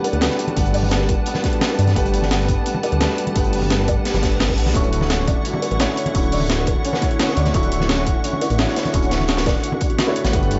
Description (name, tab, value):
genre	liquid drum and bass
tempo	172 BPM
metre	4/4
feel	straight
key	D major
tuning	A4 = 440 Hz
part	dark grand piano	accompaniment	0.0-10.6 s	D3 to C#6	-27 LUFS	equal	low-pass filter, diffuse ambient delay
part	glassy FM pad	sustained chords	0.0-10.6 s	G3 to C#6	-30 LUFS	equal	ensemble chorus, built-in reverb
part	felt-muted upright piano	arpeggios	0.0-10.5 s	B3 to D5	-30 LUFS	equal	ensemble chorus, delay
part	breakbeat sampler-style drum kit	drums	0.0-10.6 s	hi-hat, snare drum	-27 LUFS	equal	none
part	crunchy breakbeat drum kit	drums	0.0-10.6 s	hi-hat, snare drum	-31 LUFS	equal	high-pass filter on hats, high-pass filter on snare, high-pass filter on room
part	bongos and congas	percussion	0.0-10.3 s	none	-30 LUFS	equal	none
part	dark detuned saw bass	bass	0.1-10.6 s	D1 to G2	-24 LUFS	equal	none
part	electronic kick drum	drums	0.6-10.4 s	none	-24 LUFS	equal	none
part	reverse cymbal	sound effects	4.3-4.8 s	none	-36 LUFS	equal	none
room	moderate plate reverb, RT60 1.2 s, small room ambience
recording	dreamy mix soaked in reverb, nothing above 7.8 kHz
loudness	-19 LUFS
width	mono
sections	0.0-10.6 A section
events	reverse cymbal 4.3-4.8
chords	0.0 Gmaj9; 4.8 Dmaj9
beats	0.22 | 0.57 0.92 1.26 1.61 | 1.96 2.31 2.66 3.01 | 3.36 3.71 4.05 4.40 | 4.75 5.10 5.45 5.80 | 6.15 6.50 6.85 7.20 | 7.54 7.89 8.24 8.59 | 8.94 9.29 9.64 9.99 | 10.33